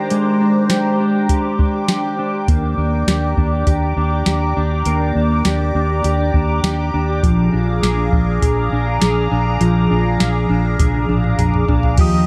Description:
dream pop; 101 BPM; 4/4; straight; A4 = 440 Hz
phased analog pad; sustained chords; 0.0-12.3 s; Eb3 to Eb6; -24 LUFS; equal; phaser, chorus
mellow electric guitar; arpeggios; 0.0-12.3 s; F3 to Ab4; -21 LUFS; equal; analog chorus, tape echo
soft vintage rhythm box; drums; 0.1-12.1 s; crash cymbal, hi-hat, kick drum, ride cymbal, snare drum, toms; -19 LUFS; equal; overdrive
vintage muted fingered electric bass; bass; 2.5-12.2 s; Bb1 to Eb2; -21 LUFS; equal
soft octave-layered synth lead; melody; 12.0-12.3 s; Eb6; -23 LUFS; equal; chorus, tremolo
moderate plate reverb, RT60 1.4 s, digital ambience; echo-heavy mix; -17 LUFS; mono
0.0-12.0 A section
drum fill 10.8-12.0
0.0 Bb13/Eb; 2.5 Ebmaj7; 7.2 Bb7

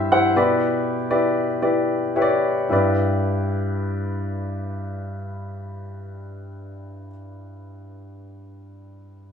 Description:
pop; 108-123 BPM; 4/4; straight; G major; A4 = 440 Hz
warm grand piano; accompaniment; 0.0-9.3 s; G2 to F#5; -21 LUFS; left 1 dB
moderate large studio reverb, RT60 0.9 s; band playing live in one room; -19 LUFS; side -7 dB against mid
0.0-2.7 A section; 2.7-7.2 B section
slowing down 0.0-2.7
0.4 Em7; 2.7 G6

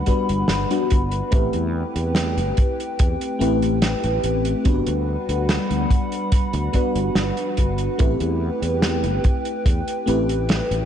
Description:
vaporwave; 72 BPM; 4/4; straight; A dorian; A4 = 439 Hz
FM electric piano with soft pad layer; accompaniment; 0.0-10.9 s; G3 to B4; -24 LUFS; left 1 dB; phaser, wide subtle chorus, analog delay
warbly tape-like pad; sustained chords; 0.0-10.9 s; G3 to B5; -28 LUFS; equal; chorus, built-in reverb
kick drum; drums; 0.1-9.8 s; -18 LUFS; equal
warm soul drum kit; drums; 0.1-10.9 s; hi-hat, snare drum; -25 LUFS; right 1 dB; gated reverb
sustaining fretless electric bass; bass; 0.3-10.8 s; G1 to E2; -24 LUFS; equal; tube saturation
light reverb, studio reverb; -18 LUFS; side -9 dB against mid
0.0-10.9 A section
0.0 Gmaj7; 1.3 Am9; 4.7 Gmaj7; 8.0 Am9

